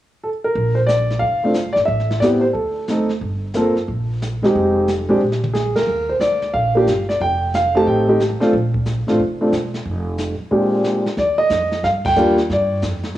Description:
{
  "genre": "jazz piano trio",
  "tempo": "181 BPM",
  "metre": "4/4",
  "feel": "swing 64% on 8ths",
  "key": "Bb major",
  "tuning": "A4 = 438 Hz",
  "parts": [
    { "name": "warm grand piano", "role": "melody", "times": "0.2-12.8 s", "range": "Bb2 to A5", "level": "-16 LUFS", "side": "equal", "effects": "none" },
    { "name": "upright bass", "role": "bass", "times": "0.6-13.2 s", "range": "E1 to A2", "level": "-23 LUFS", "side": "right 1 dB", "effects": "none" },
    { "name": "jazz brush drum kit", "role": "drums", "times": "0.6-13.2 s", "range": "brushed snare drum, crash cymbal, hi-hat, kick drum, ride cymbal, snare drum, toms", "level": "-28 LUFS", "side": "equal", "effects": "cassette tape" }
  ],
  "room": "light reverb, small room reverb",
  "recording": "home recording on cassette, studio ambience",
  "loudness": "-16 LUFS",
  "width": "side -13 dB against mid",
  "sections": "0.6-11.2 A section; 11.2-13.2 B section",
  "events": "drum fill 5.2-5.5; band accent 5.7, 12.0",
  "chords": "0.0 N.C.; 0.6 Bb; 1.9 Am7; 2.6 D5; 3.2 Gmadd11; 4.5 Fm7; 5.2 Bb; 5.9 Ebmaj9; 7.2 F9; 8.5 Bb5; 9.9 N.C.; 10.5 Bb13; 11.2 Ebmaj7; 12.5 G7(no3)"
}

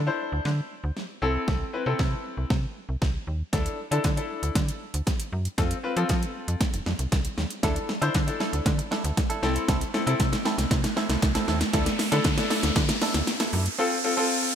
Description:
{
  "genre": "dance-pop",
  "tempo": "117 BPM",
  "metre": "4/4",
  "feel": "straight",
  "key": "D minor",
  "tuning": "A4 = 440 Hz",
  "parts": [
    { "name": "slap-like FM bass", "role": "bass", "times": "0.0-13.7 s", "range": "F1 to F3", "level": "-27 LUFS", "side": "equal", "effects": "sidechain pumping" },
    { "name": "clear baby grand piano", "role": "accompaniment", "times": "0.1-14.6 s", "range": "C4 to C5", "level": "-29 LUFS", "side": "left 3 dB", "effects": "lush chorus, sidechain pumping" },
    { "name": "pop drum kit", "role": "drums", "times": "0.5-13.8 s", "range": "hi-hat, kick drum, snare drum", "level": "-26 LUFS", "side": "equal", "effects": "overdrive, gated reverb" },
    { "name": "direct-recorded clean electric guitar", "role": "riff", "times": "7.6-14.5 s", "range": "C4 to A4", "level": "-33 LUFS", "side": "right 5 dB", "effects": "wide subtle chorus" },
    { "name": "riser", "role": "sound effects", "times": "9.8-14.6 s", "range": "none", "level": "-31 LUFS", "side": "equal", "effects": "none" }
  ],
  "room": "light reverb, digital ambience",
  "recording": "bright 1980s-style digital production",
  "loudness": "-23 LUFS",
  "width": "side -8 dB against mid",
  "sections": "0.0-14.6 A section",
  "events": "build-up 0.0-14.6; drum fill 0.0-13.8; riser 9.8-14.6",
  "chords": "0.0 Dsus2; 1.2 Am/C; 3.5 Dsus2; 5.6 F; 7.6 Dsus2; 9.4 Am/C; 11.7 Dsus2; 13.8 F"
}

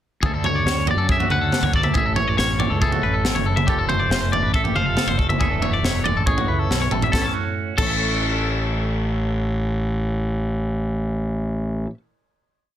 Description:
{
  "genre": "math rock and midwest emo",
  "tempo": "139 BPM",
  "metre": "4/4",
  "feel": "straight",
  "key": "A major",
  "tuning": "A4 = 440 Hz",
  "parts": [
    { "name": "twangy electric guitar", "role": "accompaniment", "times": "0.2-12.1 s", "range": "A2 to A4", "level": "-31 LUFS", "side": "right 8 dB", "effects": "phaser" },
    { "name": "twangy electric guitar", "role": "arpeggios", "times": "0.2-12.0 s", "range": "F#4 to A5", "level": "-27 LUFS", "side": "left 6 dB", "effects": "none" },
    { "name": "fuzz fingered electric bass", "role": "bass", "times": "0.2-11.9 s", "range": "E1 to F#2", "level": "-24 LUFS", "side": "equal", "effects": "overdrive" },
    { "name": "crisp fusion drum kit", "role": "drums", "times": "0.2-7.9 s", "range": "crash cymbal, kick drum, snare drum, toms", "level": "-22 LUFS", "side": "equal", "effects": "none" },
    { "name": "twangy electric guitar", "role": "melody", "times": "0.3-11.8 s", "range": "A4 to F#5", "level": "-25 LUFS", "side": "equal", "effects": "slapback echo" }
  ],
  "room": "light reverb",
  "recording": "dense, heavily limited modern master",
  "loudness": "-18 LUFS",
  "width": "side -11 dB against mid",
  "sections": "0.2-7.1 A section; 7.1-10.6 final chord",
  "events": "drum fill 6.7-7.1",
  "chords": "0.2 Dmaj7; 2.0 Amaj7; 3.7 F; 5.4 E7sus4; 6.3 A6"
}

